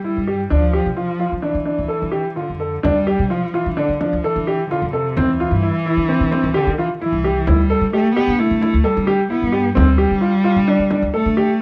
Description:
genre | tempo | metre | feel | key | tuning
contemporary instrumental, chamber music in an uneven meter | 130 BPM | 5/4 | straight | D dorian | A4 = 441 Hz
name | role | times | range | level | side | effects
dark cello | second line | 0.0-11.6 s | C3 to B3 | -22 LUFS | equal | none
warm grand piano | arpeggios | 0.0-11.5 s | C4 to A4 | -22 LUFS | equal | none
upright bass | bass | 0.2-11.4 s | C2 to D3 | -24 LUFS | equal | none
frame drum | percussion | 2.8-11.5 s | none | -28 LUFS | equal | none
room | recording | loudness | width
light reverb | dark, warm production | -18 LUFS | mono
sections
0.0-2.8 A section; 2.8-11.6 A section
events
none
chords
0.0 Em; 0.5 Dm; 5.2 Cadd9; 7.5 Em/D; 9.8 Fadd9/D

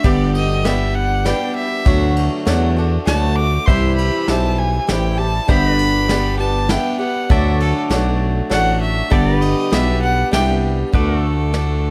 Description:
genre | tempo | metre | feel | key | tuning
honky-tonk and classic country | 99 BPM | 3/4 | straight | G major | A4 = 441 Hz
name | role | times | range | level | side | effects
clear fiddle | second line | 0.0-11.9 s | A4 to D6 | -24 LUFS | equal | none
picked swing-style acoustic guitar | accompaniment | 0.0-11.9 s | G2 to G4 | -24 LUFS | equal | none
growling FM bass | bass | 0.0-11.9 s | G1 to E2 | -20 LUFS | equal | none
vintage brush drum kit | drums | 0.0-11.7 s | kick drum, ride cymbal, snare drum | -24 LUFS | equal | none
bright upright piano | accompaniment | 0.6-10.7 s | F#4 to G5 | -29 LUFS | equal | none
pedal steel guitar | sustained chords | 3.7-11.9 s | A4 to E5 | -30 LUFS | equal | none
room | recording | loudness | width
light reverb | none | -17 LUFS | mono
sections
0.0-10.9 A section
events
fiddle solo 0.0-10.9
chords
0.0 G; 1.9 D; 3.7 C; 5.5 G; 7.3 D; 9.1 G; 10.9 D

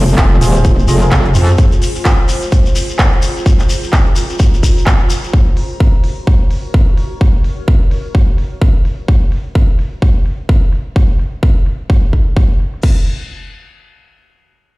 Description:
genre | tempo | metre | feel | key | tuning
bass house | 128 BPM | 4/4 | swing 59% on 16ths | unclear | A4 = 444 Hz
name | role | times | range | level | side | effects
metallic wobble bass | bass | 0.0-1.6 s | Eb1 to F2 | -10 LUFS | equal | chorus, sidechain pumping
downlifter | sound effects | 0.0-1.6 s | none | barely audible | none | none
granular cloud pad | texture | 0.0-9.1 s | F4 to Bb5 | -25 LUFS | equal | built-in reverb, sidechain pumping
shekere | percussion | 0.1-5.3 s | none | -25 LUFS | left 4 dB | none
big-room dance drum kit | drums | 0.2-12.9 s | crash cymbal, handclaps, hi-hat | -22 LUFS | equal | overdrive, low-pass filter on hats, low-pass filter on snare, low-pass filter on cymbals
electronic kick drum | drums | 0.2-12.9 s | none | -11 LUFS | equal | overdrive
percussive organ stab | stabs | 0.4-1.5 s | C4 to Eb5 | -24 LUFS | right 2 dB | chorus, sidechain pumping, tape echo
room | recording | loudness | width
little or no reverb | played on a big sound system in a bare room, stone room reverb | -10 LUFS | side -21 dB against mid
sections
0.0-12.8 A section; 12.8-14.8 B section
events
fade-out on ambient pad 0.0-9.1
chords
0.0 Fm; 5.3 Gb; 12.8 N.C.

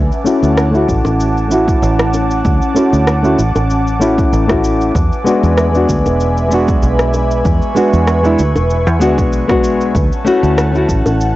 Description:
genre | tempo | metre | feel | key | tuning
sunset chillout | 96 BPM | 4/4 | swing 54% on 16ths | D lydian | A4 = 440 Hz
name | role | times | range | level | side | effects
airy breathy pad | sustained chords | 0.0-11.4 s | C#4 to D6 | -18 LUFS | equal | chorus, cassette tape, plate reverb
fingered electric bass | bass | 0.0-11.4 s | E1 to E2 | -15 LUFS | equal | none
electronic shaker and rim click | drums | 0.1-11.3 s | none | -20 LUFS | equal | overdrive, studio reverb, cassette tape
nylon-string guitar | accompaniment | 0.2-11.4 s | G#3 to F#4 | -15 LUFS | moving between left 3 dB and right 3 dB | auto-pan, low-pass filter, cassette tape, analog delay, plate reverb
electronic kick drum | drums | 0.9-11.0 s | none | -16 LUFS | equal | overdrive, studio reverb, cassette tape
bongos | percussion | 1.0-11.2 s | none | -19 LUFS | left 1 dB | none
room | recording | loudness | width
moderate booth ambience, RT60 0.2 s | home recording on cassette, nothing above 7.8 kHz | -11 LUFS | side -16 dB against mid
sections
0.0-11.4 A section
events
filter sweep on nylon-string guitar 0.0-11.4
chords
0.0 Dmaj7; 5.0 E7; 9.9 Dmaj7

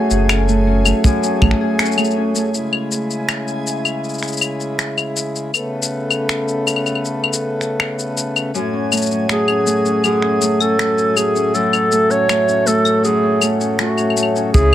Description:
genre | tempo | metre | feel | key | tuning
folktronica | 80 BPM | 4/4 | straight | F# minor | A4 = 442 Hz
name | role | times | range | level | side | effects
pedal harmonium | sustained chords | 0.0-14.7 s | A2 to G#5 | -22 LUFS | left 1 dB | plate reverb
Celtic harp | arpeggios | 0.0-14.7 s | F#2 to G#4 | -19 LUFS | equal | tape echo
backwards swelling texture | texture | 0.0-2.6, 14.5-14.7 s | G#4 to G#5 | -31 LUFS | right 1 dB | built-in reverb, plate reverb
warm sub bass | bass | 0.1-1.5, 14.5-14.7 s | F#1 to C#2 | -15 LUFS | equal | none
electronic shaker, finger snaps and claves | drums | 0.1-14.7 s | none | -20 LUFS | left 4 dB | none
kick drum | drums | 1.0-1.6, 14.5-14.7 s | none | -14 LUFS | equal | none
breathy clarinet | melody | 9.3-14.7 s | F#4 to C#5 | -16 LUFS | right 1 dB | tape echo, plate reverb
room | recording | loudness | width
moderate studio reverb, RT60 0.5 s | none | -15 LUFS | side -12 dB against mid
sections
0.0-2.5 A section; 2.5-14.5 B section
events
break 1.8-2.5; band accent 1.8-2.2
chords
0.0 F#madd9; 2.5 C#m; 5.5 Aadd9; 8.5 F#madd9

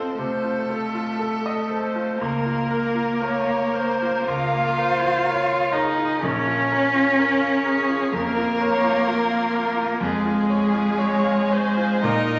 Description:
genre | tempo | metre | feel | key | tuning
classical, slow romantic movement for piano quartet | 54-64 BPM | 4/4 | rubato | Bb minor | A4 = 440 Hz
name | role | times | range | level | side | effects
rich violin | melody | 0.0-12.4 s | Ab4 to F5 | -32 LUFS | equal | none
rich cello | second line | 0.0-12.4 s | Ab3 to F4 | -24 LUFS | equal | none
bright grand piano | accompaniment | 0.0-12.4 s | Bb1 to F5 | -30 LUFS | equal | none
rich viola | accompaniment | 0.0-12.4 s | F4 to Db5 | -29 LUFS | equal | none
room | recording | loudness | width
wet recital hall reverb, RT60 1.4 s | vinyl crackle, nothing above 7.8 kHz | -22 LUFS | mono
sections
0.0-12.4 A section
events
none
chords
0.0 F7/C; 2.2 Bbm/Db; 6.2 Bbm; 10.0 Db/F

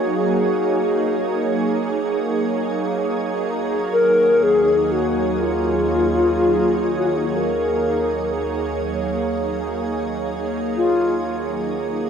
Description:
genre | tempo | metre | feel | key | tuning
ambient | free time | none | none | unclear | A4 = 440 Hz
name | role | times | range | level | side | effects
mellow alto flute | melody | 0.0-11.2 s | Eb4 to Bb4 | -19 LUFS | left 3 dB | analog delay
soft additive organ-like pad | sustained chords | 0.0-12.1 s | Eb2 to Db5 | -20 LUFS | right 3 dB | ensemble chorus, built-in reverb, cassette tape
room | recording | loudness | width
wet spring reverb, RT60 2.5 s | home recording on cassette | -18 LUFS | side -7 dB against mid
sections
0.0-12.1 A section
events
none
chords
0.0 Ebm7; 3.5 Bbm/Eb; 11.3 Ebm7

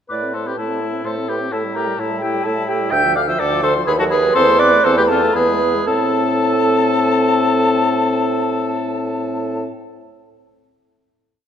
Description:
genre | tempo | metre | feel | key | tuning
quick classical-period movement for wind quintet | 114-129 BPM | 3/4 | straight | A minor | A4 = 440 Hz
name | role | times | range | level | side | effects
concert flute | melody | 0.1-9.6 s | G5 to G6 | -21 LUFS | left 5 dB | none
warm oboe | second line | 0.1-9.7 s | E4 to E5 | -22 LUFS | left 2 dB | none
dark clarinet | accompaniment | 0.1-9.7 s | G4 to G5 | -20 LUFS | right 5 dB | none
warm French horn | accompaniment | 0.1-9.7 s | D3 to C4 | -24 LUFS | left 2 dB | none
warm bassoon | bass | 0.1-9.7 s | D2 to A2 | -21 LUFS | right 2 dB | none
room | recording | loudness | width
wet concert hall reverb, RT60 1.9 s | none | -15 LUFS | side -8 dB against mid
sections
0.1-5.9 A section; 5.9-8.9 final chord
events
slowing down 2.2-5.9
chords
0.1 Am; 1.5 Gm69/A; 2.9 Dm; 3.9 B6/D#; 4.4 Am/E; 5.3 E; 5.9 Am

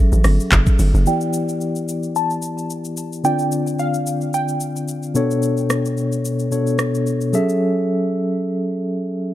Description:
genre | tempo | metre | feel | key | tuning
amapiano | 110 BPM | 4/4 | swing 55% on 16ths | E dorian | A4 = 440 Hz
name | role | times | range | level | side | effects
glassy wavetable pluck | melody | 0.0-5.1 s | E5 to A5 | -24 LUFS | right 2 dB | chorus, low-pass filter, tape echo
tine electric piano | accompaniment | 0.0-9.3 s | B2 to E5 | -20 LUFS | left 1 dB | medium tremolo, low-pass filter
hollow log drum bass | bass | 0.1-1.1 s | F#1 to A1 | -15 LUFS | equal | none
smooth R&B drum kit | drums | 0.1-7.6 s | handclaps, hi-hat, kick drum, rim click, shaker | -20 LUFS | equal | none
room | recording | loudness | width
light reverb | dark, warm production | -17 LUFS | side -13 dB against mid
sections
0.0-1.1 A section; 1.1-9.3 B section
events
drop 0.0-1.1; filter sweep 1.1-9.3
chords
0.0 F#m9; 1.1 Em7; 3.2 Dm7; 5.2 Bm9; 7.3 F#m9

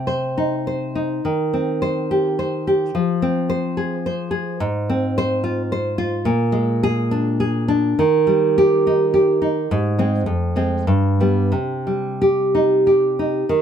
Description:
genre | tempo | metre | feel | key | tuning
romantic piece for solo classical guitar | 90-109 BPM | 3/4 | rubato | C minor | A4 = 440 Hz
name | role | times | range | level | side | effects
nylon-string guitar | solo | 0.0-13.6 s | F2 to C5 | -17 LUFS | equal | none
room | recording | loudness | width
moderate small room ambience, RT60 0.5 s | none | -17 LUFS | side -8 dB against mid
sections
0.0-13.5 A section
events
none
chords
0.0 Cm; 1.2 Cm/Eb; 2.9 Fm; 4.6 Fm/Ab; 6.3 Bb7; 8.0 Eb; 9.7 Ab; 10.3 Fm; 10.9 G; 11.5 Cm

